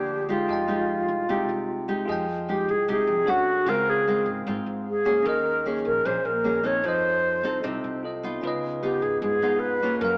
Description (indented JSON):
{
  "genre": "bossa nova",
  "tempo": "151 BPM",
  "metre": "4/4",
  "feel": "straight",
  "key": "F minor",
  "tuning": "A4 = 439 Hz",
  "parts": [
    { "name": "bright alto flute", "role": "melody", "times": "0.0-10.2 s", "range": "F4 to Db5", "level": "-26 LUFS", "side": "equal", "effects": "none" },
    { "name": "bell-like tine electric piano", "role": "accompaniment", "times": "0.0-10.2 s", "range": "C4 to G5", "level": "-35 LUFS", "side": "equal", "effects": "none" },
    { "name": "nylon-string guitar", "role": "accompaniment", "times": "0.0-10.2 s", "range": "Ab2 to A4", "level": "-31 LUFS", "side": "equal", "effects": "none" },
    { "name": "upright bass", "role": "bass", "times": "0.0-10.2 s", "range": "Ab1 to Gb2", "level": "-42 LUFS", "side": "equal", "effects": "none" }
  ],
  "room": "moderate plate reverb, RT60 2.6 s",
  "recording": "heard from further back in the room, small speaker sound",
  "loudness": "-25 LUFS",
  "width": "mono",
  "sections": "0.0-2.1 A section; 2.1-10.2 B section",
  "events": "none",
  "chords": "0.5 Fm9; 3.3 Dmaj7; 3.7 Dbmaj7; 5.3 Eb7sus4; 6.8 F7; 8.4 Db9"
}